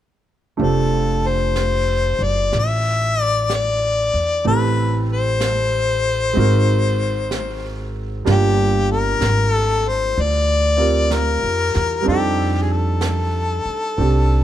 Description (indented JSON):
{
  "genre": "jazz ballad",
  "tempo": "63 BPM",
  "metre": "4/4",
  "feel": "swing 66% on 8ths",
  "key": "F major",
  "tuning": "A4 = 440 Hz",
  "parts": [
    { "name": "clear harmonica", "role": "melody", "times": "0.6-14.4 s", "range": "G4 to E5", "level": "-20 LUFS", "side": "left 4 dB", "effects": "none" },
    { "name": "clear grand piano", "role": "accompaniment", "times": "0.6-14.4 s", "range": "G3 to C5", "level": "-24 LUFS", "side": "right 4 dB", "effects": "none" },
    { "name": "upright bass", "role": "bass", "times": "0.6-14.4 s", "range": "F1 to F2", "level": "-20 LUFS", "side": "right 1 dB", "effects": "none" },
    { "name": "jazz brush drum kit", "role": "drums", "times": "0.6-14.4 s", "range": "brushed snare drum, hi-hat, snare drum", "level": "-32 LUFS", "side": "right 4 dB", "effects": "none" }
  ],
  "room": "little or no reverb",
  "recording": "dark, warm production",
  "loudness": "-16 LUFS",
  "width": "side -11 dB against mid",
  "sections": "0.6-14.4 A section",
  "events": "none",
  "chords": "0.6 F6; 4.4 Am7; 6.4 Ab9; 8.3 Gm7; 12.1 F13"
}